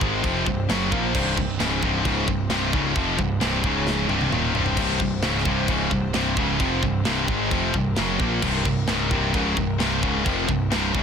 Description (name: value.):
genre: heavy metal.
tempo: 132 BPM.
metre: 4/4.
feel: straight.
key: C phrygian.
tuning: A4 = 440 Hz.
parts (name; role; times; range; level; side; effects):
warm studio string section; sustained chords; 0.0-11.0 s; Db3 to Db5; -36 LUFS; left 1 dB; none.
scooped high-gain guitar; riff; 0.0-11.0 s; C2 to Bb3; -26 LUFS; right 10 dB; distortion.
sludgy distorted guitar; riff; 0.0-11.0 s; C2 to Bb3; -28 LUFS; equal; overdrive.
tight distorted guitar; riff; 0.0-11.0 s; C2 to Bb3; -26 LUFS; left 13 dB; distortion.
fuzz picked electric bass; bass; 0.0-11.0 s; C1 to Bb1; -29 LUFS; equal; overdrive.
tight metal drum kit; drums; 0.0-11.0 s; china cymbal, crash cymbal, kick drum, snare drum, toms; -28 LUFS; equal; none.
room: light reverb.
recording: dense, heavily limited modern master.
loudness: -20 LUFS.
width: side -7 dB against mid.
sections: 0.0-11.0 A section.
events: drum fill 3.9-4.8.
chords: 0.0 Cm; 3.6 Db5; 4.1 Cm.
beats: 0.24 0.69 | 1.14 1.60 2.05 2.50 | 2.96 3.41 3.87 4.32 | 4.78 5.23 5.69 6.14 | 6.60 7.06 7.51 7.97 | 8.43 8.89 9.34 9.80 | 10.26 10.72.